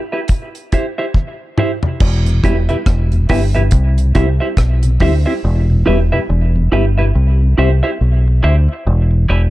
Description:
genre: dub reggae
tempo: 70 BPM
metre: 4/4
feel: swing 59% on 16ths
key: E minor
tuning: A4 = 440 Hz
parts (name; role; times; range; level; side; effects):
- clean electric guitar; accompaniment; 0.1-9.4 s; E4 to E5; -20 LUFS; right 2 dB; high-pass filter, dub echo
- deep reggae drum kit; drums; 0.3-5.2 s; crash cymbal, hi-hat, kick drum, rim click, toms; -15 LUFS; equal; none
- deep dub fingered electric bass; bass; 2.0-9.5 s; E1 to D2; -12 LUFS; equal; none
- mellow tonewheel organ; accompaniment; 2.3-9.2 s; E2 to E4; -24 LUFS; left 2 dB; slow rotary speaker, high-pass filter, dub echo
room: studio ambience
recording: dark, warm production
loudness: -12 LUFS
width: side -16 dB against mid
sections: 0.0-2.0 A section; 2.0-9.5 B section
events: drum fill 1.2-2.0; part muted 5.4-9.5; filter sweep 5.4-9.5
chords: 0.3 C; 2.0 Em; 3.7 C; 5.4 Em; 7.1 C; 8.9 Em

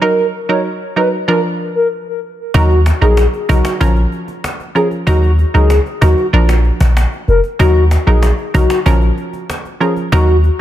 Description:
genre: dancehall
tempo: 95 BPM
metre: 4/4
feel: straight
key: Eb minor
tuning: A4 = 441 Hz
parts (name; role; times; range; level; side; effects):
- hollow clarinet-like synth lead; melody; 0.0-10.4 s; Gb4 to Db5; -17 LUFS; left 1 dB; chorus, ping-pong delay
- hollow square pluck; accompaniment; 0.0-10.3 s; F3 to Bb4; -18 LUFS; right 2 dB; chorus
- warm 808-style bass; bass; 2.5-10.5 s; F1 to Eb2; -11 LUFS; equal; none
- cajon; drums; 2.5-10.5 s; none; -22 LUFS; equal; none
room: digital ambience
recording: dense, heavily limited modern master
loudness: -11 LUFS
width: side -12 dB against mid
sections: 0.0-2.5 A section; 2.5-10.6 B section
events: break 0.0-2.5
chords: 0.0 Ebm; 1.3 Bb; 2.5 Ebm; 3.8 Bbm; 5.1 Ebm; 6.3 Bb; 7.6 Ebm; 8.9 Bbm

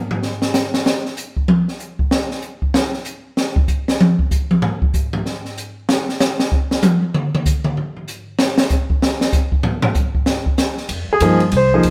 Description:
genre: jazz piano trio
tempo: 191 BPM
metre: 4/4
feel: swing 62% on 8ths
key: F minor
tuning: A4 = 438 Hz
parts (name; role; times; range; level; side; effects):
- open jazz drum kit; drums; 0.1-11.9 s; hi-hat, kick drum, ride cymbal, snare drum, toms; -19 LUFS; equal; none
- upright bass; bass; 10.9-11.9 s; C2 to G2; -21 LUFS; equal; none
- warm concert grand piano; melody; 11.1-11.8 s; F3 to C5; -15 LUFS; equal; none
room: moderate stone room reverb, RT60 1.1 s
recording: band playing live in one room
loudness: -18 LUFS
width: mono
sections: 0.9-10.9 A section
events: drum solo 0.0-10.9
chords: 0.0 N.C.; 10.9 Fm9

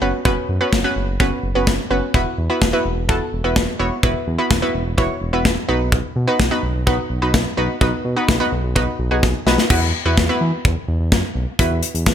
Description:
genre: synth-pop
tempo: 127 BPM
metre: 4/4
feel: straight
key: unclear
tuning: A4 = 440 Hz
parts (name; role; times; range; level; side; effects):
- analog pluck; accompaniment; 0.0-12.1 s; B3 to C#5; -20 LUFS; right 1 dB; chorus
- smooth synth bass; bass; 0.0-12.1 s; E1 to E3; -22 LUFS; equal; none
- modern studio drum kit; drums; 0.3-12.1 s; crash cymbal, hi-hat, kick drum, snare drum; -19 LUFS; left 1 dB; gated reverb
room: light reverb, small room ambience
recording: none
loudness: -16 LUFS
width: side -9 dB against mid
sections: 0.0-9.7 A section; 9.7-12.1 B section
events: drum fill 9.2-9.7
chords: 0.0 F#sus4; 2.1 Esus2; 5.7 B; 9.7 Esus2

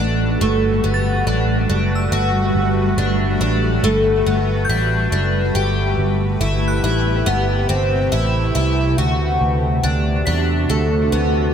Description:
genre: dream pop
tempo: 70 BPM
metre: 4/4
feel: straight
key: G major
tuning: A4 = 440 Hz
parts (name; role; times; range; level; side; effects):
- granular cloud pad; sustained chords; 0.0-11.5 s; C3 to B4; -21 LUFS; equal; built-in reverb
- picked twelve-string acoustic guitar; arpeggios; 0.0-11.5 s; A3 to G4; -21 LUFS; left 1 dB; wide subtle chorus, analog delay
- vintage muted picked electric bass; bass; 0.0-11.5 s; F#1 to E2; -19 LUFS; equal; none
- glassy synth bell; texture; 0.9-11.5 s; E6 to B6; -29 LUFS; equal; chorus, phaser, analog delay
room: light reverb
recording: echo-heavy mix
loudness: -15 LUFS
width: side -8 dB against mid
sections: 0.0-11.5 A section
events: none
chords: 0.0 Gmaj9; 5.6 Am9/G; 9.0 D7

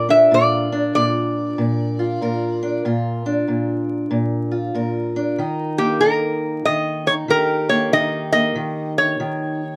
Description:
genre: acoustic country blues, solo or duo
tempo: 95 BPM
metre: 4/4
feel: swing 64% on 8ths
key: Bb major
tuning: A4 = 440 Hz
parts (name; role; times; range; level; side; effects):
- metal-body resonator slide guitar; melody; 0.0-9.8 s; G4 to E5; -20 LUFS; equal; none
- fingerpicked steel-string acoustic guitar; accompaniment; 0.0-9.8 s; Bb2 to Bb4; -23 LUFS; equal; none
room: light reverb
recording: close, detailed microphones, vinyl crackle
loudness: -20 LUFS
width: mono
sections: 0.0-9.8 A section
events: none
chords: 0.0 Bb; 5.4 Eb

